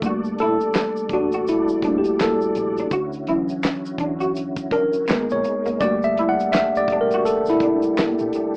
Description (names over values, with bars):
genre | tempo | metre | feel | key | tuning
R&B, neo-soul | 83 BPM | 4/4 | swing 60% on 16ths | unclear | A4 = 441 Hz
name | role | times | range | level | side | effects
mellow tine electric piano | accompaniment | 0.0-8.6 s | E3 to F#5 | -19 LUFS | equal | medium stereo tremolo
tonewheel organ | sustained chords | 0.0-8.6 s | D3 to D5 | -30 LUFS | equal | slow rotary speaker, chorus vibrato
deep dub fingered electric bass | bass | 0.0-8.3 s | F#1 to E2 | -37 LUFS | equal | none
damped 70s drum kit | drums | 0.0-8.5 s | handclaps, hi-hat, kick drum, snare drum | -24 LUFS | equal | none
tube shaker and finger snaps | percussion | 0.0-8.5 s | none | -36 LUFS | equal | none
electric guitar through a small old amp | second line | 0.1-8.4 s | Bb3 to F#4 | -26 LUFS | equal | ensemble chorus
room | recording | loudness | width
light reverb | rough home demo mix, AM radio sound | -18 LUFS | side -32 dB against mid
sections
0.0-8.6 A section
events
tine electric piano solo 0.0-8.6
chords
0.0 Gmadd9; 2.9 Dmaj9; 5.1 G#madd9; 5.8 Gmadd9